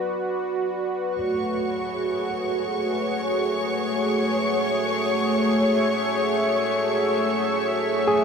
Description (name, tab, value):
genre	ambient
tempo	free time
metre	none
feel	none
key	unclear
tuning	A4 = 440 Hz
part	warm analog pad	sustained chords	0.0-8.2 s	A3 to E5	-22 LUFS	equal	chorus, shimmer reverb
part	barky tine electric piano	arpeggios	0.0-8.2 s	G#4	-20 LUFS	right 1 dB	none
part	rich studio violin section	texture	1.2-8.2 s	C#5 to C#6	-27 LUFS	left 2 dB	shimmer reverb
room	wet huge ambient reverb, RT60 8.3 s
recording	none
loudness	-21 LUFS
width	side -6 dB against mid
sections	0.0-8.2 A section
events	none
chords	0.0 Bm; 1.1 F#m7/A